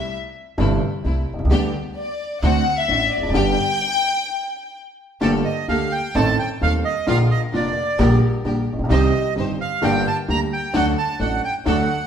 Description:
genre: tango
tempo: 131 BPM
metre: 4/4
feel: rubato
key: G major, G minor from 5.2 s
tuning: A4 = 442 Hz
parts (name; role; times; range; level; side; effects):
- warm studio violin section; second line; 0.0-4.7 s; D5 to G5; -21 LUFS; left 4 dB; none
- warm upright piano; accompaniment; 0.6-11.9 s; Eb1 to A4; -22 LUFS; equal; none
- warm studio string section; stabs; 0.6-11.9 s; A3 to C5; -27 LUFS; equal; none
- upright bass; bass; 0.6-11.9 s; E1 to Eb2; -22 LUFS; equal; none
- bandoneon; melody; 5.2-12.1 s; D5 to Bb5; -23 LUFS; right 4 dB; none
room: wet stone room reverb, RT60 1.4 s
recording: band playing live in one room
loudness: -18 LUFS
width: side -8 dB against mid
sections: 0.0-5.2 A section; 5.2-12.1 B section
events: violin section solo 0.0-5.2; stop 4.3-5.2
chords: 0.0 C6; 1.5 G/D; 2.4 D7; 3.3 G; 5.2 Gmadd9; 6.1 Adim; 7.1 Bb; 8.0 Gm/Bb; 8.9 Cm; 9.8 Gm; 10.7 D

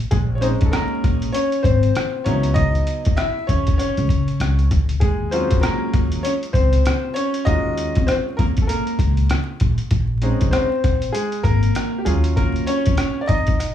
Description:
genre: hip hop, jazz-hop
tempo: 98 BPM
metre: 4/4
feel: swing 60% on 16ths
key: Eb dorian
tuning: A4 = 438 Hz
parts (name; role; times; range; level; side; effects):
- bright upright piano; accompaniment; 0.1-13.7 s; Gb3 to Fb5; -22 LUFS; left 1 dB; none
- upright bass; bass; 0.1-13.5 s; Ab1 to Db3; -20 LUFS; equal; none
- trip hop sampler-style drum kit; drums; 0.1-13.7 s; hi-hat, kick drum, rim click; -21 LUFS; equal; none
room: light reverb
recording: vinyl crackle, studio ambience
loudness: -17 LUFS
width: side -10 dB against mid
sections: 0.0-13.7 A section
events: upright piano solo 0.0-13.7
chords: 0.1 Bbm11; 2.3 Dbm11; 5.0 Ebm11; 9.9 Bbm11; 12.1 Ebm9

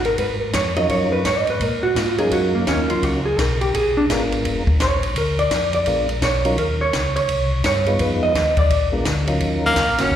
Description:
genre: soul jazz organ trio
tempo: 169 BPM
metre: 4/4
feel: swing 63% on 8ths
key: Eb minor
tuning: A4 = 439 Hz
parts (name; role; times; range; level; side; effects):
- hollow-body jazz guitar; accompaniment; 0.0-10.1 s; Eb3 to Eb5; -20 LUFS; right 1 dB; slapback echo
- mellow tonewheel organ; bass; 0.0-10.2 s; F1 to Bb2; -24 LUFS; left 1 dB; chorus vibrato, slow rotary speaker
- compact cocktail drum kit; drums; 0.0-10.2 s; hi-hat, kick drum, ride cymbal, snare drum; -24 LUFS; equal; none
- percussive tonewheel organ; melody; 0.8-9.7 s; Gb3 to Cb5; -24 LUFS; left 1 dB; slow rotary speaker, chorus vibrato, slapback echo
- bright tenor saxophone; melody; 9.7-10.2 s; Bb3 to Db4; -16 LUFS; left 1 dB; slapback echo
room: moderate digital room reverb, RT60 1.2 s, small room ambience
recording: live gig heard through the venue's PA, recital hall reverb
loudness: -17 LUFS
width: side -10 dB against mid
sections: 0.0-9.4 A section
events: hollow-body jazz guitar solo 0.0-9.4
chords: 0.0 Ebm7; 3.7 Bb7b9; 6.6 Bbmadd11; 7.3 C5; 8.0 Fm7b5; 8.7 Bb; 9.4 Ebm7

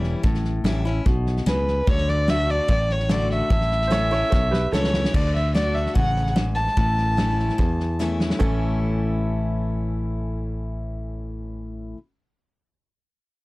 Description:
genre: honky-tonk and classic country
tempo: 147 BPM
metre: 4/4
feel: straight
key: A major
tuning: A4 = 440 Hz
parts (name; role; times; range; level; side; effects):
- picked steel-string acoustic guitar; accompaniment; 0.0-12.0 s; E2 to F#4; -28 LUFS; left 3 dB; none
- sustaining fretless electric bass; bass; 0.0-11.9 s; E1 to E2; -25 LUFS; equal; transformer saturation
- natural country drum kit; drums; 0.0-8.5 s; crash cymbal, hi-hat, kick drum, snare drum; -24 LUFS; equal; none
- dark fiddle; melody; 1.5-7.9 s; B4 to A5; -24 LUFS; equal; none
- bright upright piano; second line; 3.9-5.0, 8.4-11.9 s; C#4 to C#5; -31 LUFS; right 4 dB; none
room: little or no reverb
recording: dry, gritty hardware recording, cassette tape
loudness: -20 LUFS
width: side -21 dB against mid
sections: 0.0-5.1 A section; 5.1-8.4 B section; 8.4-11.7 C section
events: drum fill 4.3-5.1, 8.0-8.4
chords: 0.0 A7; 1.9 D; 3.5 A; 5.1 D; 6.8 A

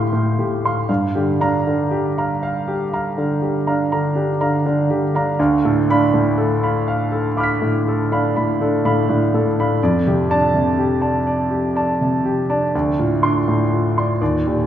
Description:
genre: classical, impressionist solo piano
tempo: 41 BPM (dotted quarters)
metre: 9/8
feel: rubato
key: D minor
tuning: A4 = 440 Hz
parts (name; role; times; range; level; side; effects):
- warm grand piano; solo; 0.0-14.7 s; D2 to B6; -16 LUFS; equal; none
room: wet recital hall reverb, RT60 1.7 s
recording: heard from further back in the room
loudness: -16 LUFS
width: side -10 dB against mid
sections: 0.0-14.7 A section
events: none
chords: 0.0 Dm7; 0.9 Gm7; 5.4 Dm6; 9.8 F69; 12.7 Dm7

